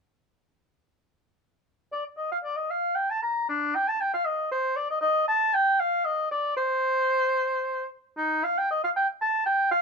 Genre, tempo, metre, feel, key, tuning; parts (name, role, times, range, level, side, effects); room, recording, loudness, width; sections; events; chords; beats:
classical, baroque-style fantasia for unaccompanied oboe; 77 BPM (dotted quarters); 6/8; rubato; A4 = 440 Hz
warm oboe; solo; 1.9-9.8 s; D4 to Bb5; -23 LUFS; equal
moderate studio reverb, RT60 0.8 s; -24 LUFS; side -4 dB against mid
1.9-9.8 A section
| 1.93 2.71 | 3.50 4.28 | 5.04 5.80 | 6.57 7.35 | 8.17 8.96 | 9.72